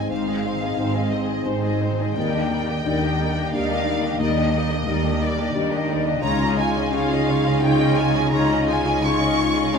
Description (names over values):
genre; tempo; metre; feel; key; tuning
cinematic, emotional film score for orchestra; 88 BPM; 3/4; rubato; Eb major; A4 = 440 Hz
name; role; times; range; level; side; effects
warm symphonic violin section; melody; 0.0-9.8 s; C5 to Db6; -27 LUFS; left 1 dB; none
warm symphonic violin section; second line; 0.0-9.8 s; F4 to Eb5; -28 LUFS; left 3 dB; none
felt-muted upright piano; accompaniment; 0.0-9.8 s; Db2 to Ab4; -27 LUFS; left 4 dB; none
warm studio viola section; accompaniment; 0.0-9.8 s; G3 to F4; -28 LUFS; right 1 dB; none
dark French horn section; sustained chords; 0.0-9.8 s; Eb3 to Eb4; -27 LUFS; left 2 dB; none
concert harp; arpeggios; 0.0-9.8 s; Ab2 to Db5; -29 LUFS; left 1 dB; none
warm symphonic cello section; bass; 0.0-9.8 s; Ab2 to Eb3; -28 LUFS; right 3 dB; none
warm symphonic double bass section; bass; 0.0-9.8 s; Ab1 to Eb2; -28 LUFS; right 4 dB; none
room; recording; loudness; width
wet scoring stage reverb, RT60 1.5 s; minimal, uncompressed stereo recording; -19 LUFS; side -6 dB against mid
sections
0.0-9.8 A section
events
none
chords
0.0 Ab; 2.2 Ebmaj7; 6.2 Dbadd9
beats
| 0.10 0.78 1.45 | 2.16 2.85 3.53 | 4.20 4.87 5.55 | 6.23 6.92 7.61 | 8.31 9.03 9.73